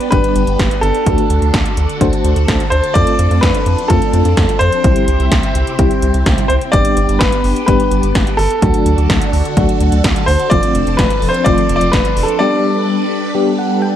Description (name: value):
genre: synth-pop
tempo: 127 BPM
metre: 4/4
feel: straight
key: unclear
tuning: A4 = 442 Hz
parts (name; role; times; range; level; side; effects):
- bright grand piano; melody; 0.0-13.3 s; A4 to D5; -18 LUFS; left 1 dB; tape echo
- phased string machine; sustained chords; 0.0-14.0 s; C3 to B4; -21 LUFS; right 1 dB; ensemble chorus, phaser
- 80s electronic pad drums; drums; 0.0-12.4 s; hi-hat, kick drum, snare drum; -16 LUFS; equal; none
- FM electric piano with tremolo; accompaniment; 0.1-14.0 s; F3 to G5; -18 LUFS; left 2 dB; phaser
- rubbery square bass; bass; 0.1-12.3 s; F1 to F2; -16 LUFS; equal; none
room: light reverb, digital ambience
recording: none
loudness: -11 LUFS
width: side -10 dB against mid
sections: 0.0-14.0 A section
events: FM electric piano fill 13.3-14.0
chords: 0.0 G; 1.1 D; 3.0 F6; 4.8 C; 6.7 G; 8.6 D; 10.5 F6; 12.4 Gadd9